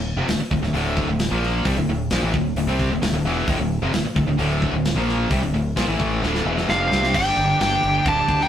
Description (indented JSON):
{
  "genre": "heavy metal",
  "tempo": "131 BPM",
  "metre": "4/4",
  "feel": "straight",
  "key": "D minor",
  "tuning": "A4 = 441 Hz",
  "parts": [
    { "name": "distorted electric guitar", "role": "riff", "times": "0.0-8.5 s", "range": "D2 to G4", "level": "-26 LUFS", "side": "left 5 dB", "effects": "overdrive" },
    { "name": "tight distorted guitar", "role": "riff", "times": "0.0-8.5 s", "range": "D2 to C4", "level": "-27 LUFS", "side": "right 5 dB", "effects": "distortion" },
    { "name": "tight distorted guitar", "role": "riff", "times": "0.0-7.1 s", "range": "D2 to C4", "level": "-27 LUFS", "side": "equal", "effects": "distortion" },
    { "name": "growling fingered electric bass", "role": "bass", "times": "0.0-8.4 s", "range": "D1 to D2", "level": "-25 LUFS", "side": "equal", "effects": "overdrive" },
    { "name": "tight metal drum kit", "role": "drums", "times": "0.3-8.5 s", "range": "crash cymbal, hi-hat, kick drum, snare drum", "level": "-26 LUFS", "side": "equal", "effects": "none" },
    { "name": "high-gain lead guitar", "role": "melody", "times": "6.7-8.5 s", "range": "F5 to A5", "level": "-20 LUFS", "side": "equal", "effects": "distortion" },
    { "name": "high-gain lead guitar", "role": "second line", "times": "6.7-8.5 s", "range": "D4 to Eb4", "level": "-30 LUFS", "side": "right 4 dB", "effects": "distortion" }
  ],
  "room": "moderate studio reverb, RT60 0.6 s",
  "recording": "rough rehearsal-room recording, tube saturation",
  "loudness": "-18 LUFS",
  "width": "side -10 dB against mid",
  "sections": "0.0-7.1 A section; 7.1-8.5 B section",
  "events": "drum fill 6.2-7.1",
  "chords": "0.0 Dm; 7.1 G5"
}